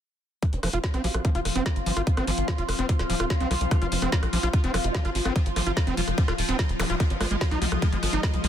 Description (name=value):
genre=psychedelic trance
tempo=146 BPM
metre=4/4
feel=straight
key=F minor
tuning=A4 = 438 Hz
part: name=pulsing gated texture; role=sustained chords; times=1.2-8.5 s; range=F3 to F4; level=-32 LUFS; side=left 1 dB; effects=chorus, built-in reverb, sidechain pumping
part: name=screaming distorted acid line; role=riff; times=0.4-8.5 s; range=F3 to F4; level=-31 LUFS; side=moving between left 4 dB and right 4 dB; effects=distortion, chorus, auto-pan, sidechain pumping, tape echo
part: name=drum and bass drum kit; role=drums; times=0.4-8.5 s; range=hi-hat, rim click, snare drum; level=-31 LUFS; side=equal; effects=none
part: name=electronic kick drum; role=drums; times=0.4-8.3 s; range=none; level=-24 LUFS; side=equal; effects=none
part: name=airy breathy pad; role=texture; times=0.8-8.5 s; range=Ab3 to Eb6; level=-33 LUFS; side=left 1 dB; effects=chorus, phaser, sidechain pumping
part: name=vowel-sweep wobble bass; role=second line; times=0.5-1.2, 3.8-7.8 s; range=C4 to F4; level=-41 LUFS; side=right 4 dB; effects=none
part: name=tight sequencer bass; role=bass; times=0.5-8.5 s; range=Eb1 to C2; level=-28 LUFS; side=equal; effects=none
part: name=zap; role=sound effects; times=6.8-6.9 s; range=none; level=-36 LUFS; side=equal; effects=none
room=little or no reverb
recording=dense, heavily limited modern master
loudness=-23 LUFS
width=side -10 dB against mid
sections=0.4-8.5 A section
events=filter sweep on acid bass 0.4-8.5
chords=0.4 F5; 7.0 Ab5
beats=| 0.42 0.84 1.25 1.66 | 2.07 2.48 2.89 3.30 | 3.71 4.12 4.54 4.95 | 5.36 5.77 6.18 6.59 | 7.00 7.41 7.82 8.23